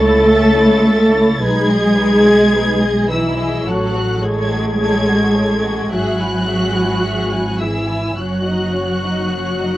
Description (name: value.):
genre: classical, slow romantic movement for string orchestra.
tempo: 53 BPM.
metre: 4/4.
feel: rubato.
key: unclear.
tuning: A4 = 440 Hz.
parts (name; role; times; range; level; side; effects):
warm symphonic violin section; melody; 0.0-9.8 s; E6 to A6; -23 LUFS; left 1 dB; none.
warm symphonic violin section; second line; 0.0-9.8 s; C#4 to G#5; -23 LUFS; equal; none.
rich symphonic viola section; accompaniment; 0.0-9.8 s; E4 to A4; -18 LUFS; equal; none.
dark symphonic cello section; bass; 0.0-9.8 s; E3 to A3; -18 LUFS; equal; none.
rich symphonic double bass section; bass; 0.0-9.8 s; F#1 to C#2; -21 LUFS; equal; none.
room: moderate studio reverb, RT60 0.8 s.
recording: worn, warbling old tape, cassette tape, warbly pitch drift.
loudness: -13 LUFS.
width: side -15 dB against mid.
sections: 0.0-9.8 A section.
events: none.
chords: 0.0 A/C#; 1.4 G#m/B; 3.7 F#m/A; 5.9 E/G#; 8.2 D#m7/F#.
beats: 0.28 1.41 2.54 | 3.67 4.81 5.93 7.04 | 8.19 9.35.